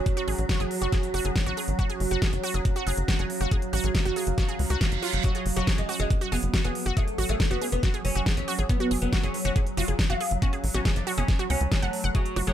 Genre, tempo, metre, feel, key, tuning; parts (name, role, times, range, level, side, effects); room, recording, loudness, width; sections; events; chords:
psychedelic trance; 139 BPM; 4/4; straight; A4 = 440 Hz
swarming drone; sustained chords; 0.0-12.5 s; F#3; -35 LUFS; right 1 dB; built-in reverb, sidechain pumping
deep dark ambient pad; texture; 0.0-12.5 s; F#4 to B5; -35 LUFS; right 3 dB; chorus, built-in reverb, sidechain pumping
big-room dance drum kit; drums; 0.1-12.5 s; bongos, hi-hat, snare drum; -32 LUFS; equal; studio ambience
electronic kick drum; drums; 0.1-12.2 s; -25 LUFS; equal; studio ambience
wide unison pluck; riff; 0.2-12.5 s; E#4 to F#5; -33 LUFS; right 2 dB; auto-pan, sidechain pumping, digital delay
tight sequencer bass; bass; 0.3-12.5 s; F#1 to C#2; -27 LUFS; equal
reverse cymbal; sound effects; 4.6-5.2 s; -34 LUFS; right 7 dB
oud; melody; 5.2-12.5 s; F#3 to E#4; -31 LUFS; equal; phaser, sidechain pumping, digital delay
light reverb; -23 LUFS; side -11 dB against mid
0.0-12.5 A section
reverse cymbal 4.6-5.2
0.0 F#5